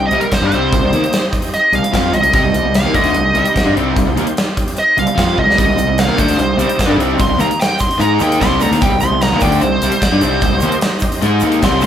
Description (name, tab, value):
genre	classic rock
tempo	149 BPM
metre	4/4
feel	straight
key	C minor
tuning	A4 = 441 Hz
part	smooth overdriven lead guitar	melody	0.0-11.9 s	Bb4 to C6	-16 LUFS	right 1 dB	wah
part	bright tonewheel organ	sustained chords	0.0-11.9 s	C4 to Eb5	-26 LUFS	right 2 dB	slow rotary speaker, overdrive, chorus vibrato
part	overdriven electric guitar	riff	0.0-11.9 s	C3 to Ab4	-21 LUFS	right 5 dB	none
part	raw garage guitar	riff	0.0-11.9 s	C3 to Ab4	-17 LUFS	left 4 dB	overdrive
part	fingered electric bass	bass	0.0-11.9 s	C2 to Ab2	-20 LUFS	equal	none
part	gated 80s drum kit	drums	0.1-11.9 s	hi-hat, kick drum, snare drum	-18 LUFS	equal	none
part	egg shaker	percussion	5.6-11.9 s	none	-34 LUFS	right 8 dB	none
room	moderate large studio reverb, RT60 0.9 s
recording	band playing live in one room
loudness	-12 LUFS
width	side -10 dB against mid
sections	0.0-11.9 A section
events	lead electric guitar solo 0.0-11.9; drum fill 5.4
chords	0.0 Cm